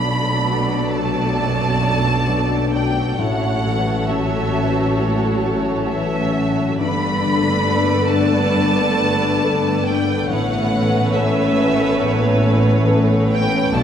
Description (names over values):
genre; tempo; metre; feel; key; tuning
cinematic, emotional film score for orchestra; 68 BPM; 4/4; uneven beats, rubato; unclear; A4 = 441 Hz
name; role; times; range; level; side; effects
rich studio violin section; melody; 0.0-13.8 s; E5 to B5; -24 LUFS; equal; none
rich studio violin section; second line; 0.0-13.8 s; A4 to D5; -25 LUFS; right 2 dB; none
warm concert grand piano; accompaniment; 0.0-13.8 s; B1 to A4; -25 LUFS; left 2 dB; none
warm studio viola section; accompaniment; 0.0-13.8 s; F#3 to A4; -26 LUFS; right 2 dB; none
warm French horn section; sustained chords; 0.0-13.8 s; F#3 to D4; -24 LUFS; left 2 dB; none
concert harp; arpeggios; 0.0-13.8 s; G2 to D4; -25 LUFS; left 9 dB; none
dark studio double bass section; bass; 0.0-13.8 s; G1 to B1; -25 LUFS; right 3 dB; none
rich studio cello section; bass; 0.0-13.8 s; G2 to B2; -23 LUFS; right 2 dB; none
room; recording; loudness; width
moderate recital hall reverb, RT60 1.4 s; none; -16 LUFS; side -8 dB against mid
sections
0.0-13.8 A section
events
none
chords
0.0 Bm7; 3.2 F#m7/A; 6.8 Gadd9; 10.3 Aadd9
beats
0.49 1.38 2.28 | 3.19 4.10 4.98 5.87 | 6.80 7.69 8.57 9.44 | 10.31 11.17 12.02 12.87 | 13.73